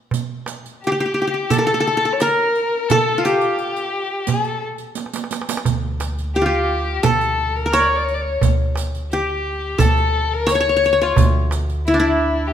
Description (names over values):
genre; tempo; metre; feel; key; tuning
Arabic maqam ensemble; 87 BPM; 4/4; straight; D maqam nahawand; A4 = 440 Hz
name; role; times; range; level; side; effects
darbuka; percussion; 0.1-11.8 s; none; -23 LUFS; right 7 dB; none
riq; percussion; 0.1-12.0 s; none; -30 LUFS; right 8 dB; none
dark violin; second line; 0.8-12.5 s; E4 to D5; -21 LUFS; left 5 dB; none
qanun; melody; 0.9-12.5 s; D4 to C#5; -19 LUFS; equal; none
upright bass; bass; 5.7-12.5 s; D2; -21 LUFS; equal; none
room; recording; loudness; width
moderate recital hall reverb, RT60 1.7 s; minimal, uncompressed stereo recording; -16 LUFS; side -9 dB against mid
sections
0.0-12.5 A section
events
drum fill 5.0-5.6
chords
none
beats
| 0.12 0.81 1.50 2.19 | 2.88 3.58 4.27 4.96 | 5.65 6.34 7.03 7.72 | 8.41 9.10 9.79 10.48 | 11.18 11.87